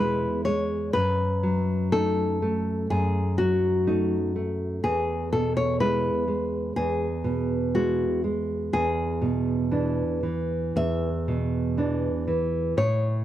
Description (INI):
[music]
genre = romantic duo for nylon-string guitar and classical guitar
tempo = 61 BPM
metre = 4/4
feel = rubato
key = E major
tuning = A4 = 441 Hz
[part]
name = nylon-string guitar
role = melody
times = 0.0-13.2 s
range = F#4 to E5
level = -27 LUFS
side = left 2 dB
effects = none
[part]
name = nylon-string guitar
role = accompaniment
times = 0.0-13.2 s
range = E2 to E4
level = -25 LUFS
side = right 1 dB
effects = none
[sound]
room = small room ambience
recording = dry, close 1970s-style studio recording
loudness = -23 LUFS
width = side -12 dB against mid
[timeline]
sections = 0.0-13.2 A section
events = none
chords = 0.0 E; 0.9 D#dim/F#; 4.8 E; 8.7 E7